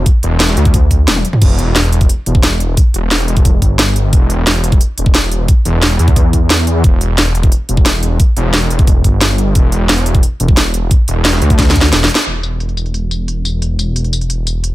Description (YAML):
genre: dark technical drum and bass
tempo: 177 BPM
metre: 4/4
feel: straight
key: E minor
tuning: A4 = 439 Hz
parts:
  - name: wide detuned saw bass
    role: bass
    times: 0.0-14.7 s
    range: E1 to E2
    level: -14 LUFS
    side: equal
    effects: chorus, tube saturation
  - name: drum and bass drum kit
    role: drums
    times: 0.1-14.7 s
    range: crash cymbal, hi-hat, snare drum, tambourine, toms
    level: -14 LUFS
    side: equal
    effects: low-pass filter on hats, low-pass filter on snare, low-pass filter on toms, low-pass filter on cymbals, low-pass filter on perc, low-pass filter on room
  - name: electronic kick drum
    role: drums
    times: 0.1-11.8 s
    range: none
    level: -10 LUFS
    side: equal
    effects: none
room: little or no reverb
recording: none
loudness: -10 LUFS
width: side -17 dB against mid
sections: 0.0-12.3 A section; 12.3-14.7 B section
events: drum fill 1.1-1.4, 11.6-12.3; band accent 12.2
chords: none